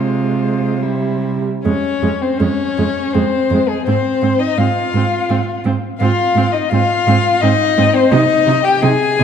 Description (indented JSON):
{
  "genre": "classical, slow romantic movement for string quartet",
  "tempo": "83 BPM",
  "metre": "3/4",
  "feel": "uneven beats, rubato",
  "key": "F minor",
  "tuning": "A4 = 442 Hz",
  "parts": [
    { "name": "rich violin", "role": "melody", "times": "0.0-9.2 s", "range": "Ab4 to Ab5", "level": "-18 LUFS", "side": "left 8 dB", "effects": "none" },
    { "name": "rich violin", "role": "second line", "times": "0.0-9.2 s", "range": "Ab3 to Ab4", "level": "-19 LUFS", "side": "left 2 dB", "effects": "none" },
    { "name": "rich viola", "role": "accompaniment", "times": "0.0-9.2 s", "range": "G3 to Eb4", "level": "-21 LUFS", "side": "right 3 dB", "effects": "none" },
    { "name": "rich cello", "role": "bass", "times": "0.0-9.2 s", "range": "F2 to C3", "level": "-18 LUFS", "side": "right 4 dB", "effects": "none" }
  ],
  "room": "moderate concert hall reverb, RT60 1.9 s",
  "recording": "dark, warm production",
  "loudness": "-13 LUFS",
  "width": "side -8 dB against mid",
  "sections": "0.0-1.7 A section; 1.7-9.2 B section",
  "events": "none",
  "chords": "0.0 Fm/C; 0.8 C; 1.7 Fm; 3.9 Fm/Ab; 8.1 Ab",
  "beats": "0.83 | 1.65 2.40 3.14 | 3.87 4.58 5.29 | 6.00 6.71 7.42 | 8.12 8.82"
}